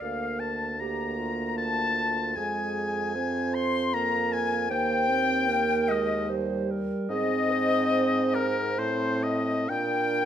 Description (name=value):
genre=classical, slow romantic movement for wind quintet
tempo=64-79 BPM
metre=3/4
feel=rubato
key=Eb major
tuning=A4 = 441 Hz
part: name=bright concert flute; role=melody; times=0.0-10.3 s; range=Bb4 to C6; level=-32 LUFS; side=left 6 dB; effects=none
part: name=bright oboe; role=second line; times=0.0-10.3 s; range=Bb4 to C6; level=-29 LUFS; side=left 3 dB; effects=none
part: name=dark French horn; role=accompaniment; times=0.0-10.3 s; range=G3 to D4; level=-31 LUFS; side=equal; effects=none
part: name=dark clarinet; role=accompaniment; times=0.0-10.3 s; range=F4 to C5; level=-32 LUFS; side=right 9 dB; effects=none
part: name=mellow bassoon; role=bass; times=0.0-10.3 s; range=D2 to Bb2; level=-32 LUFS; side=right 3 dB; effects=none
room=moderate recital hall reverb, RT60 1.4 s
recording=close, detailed microphones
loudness=-24 LUFS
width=side -9 dB against mid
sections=0.0-10.3 A section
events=none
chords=0.0 Bb/D; 2.4 Bb5/F; 4.7 Eb; 7.1 Ab; 8.8 Adim; 9.7 Bb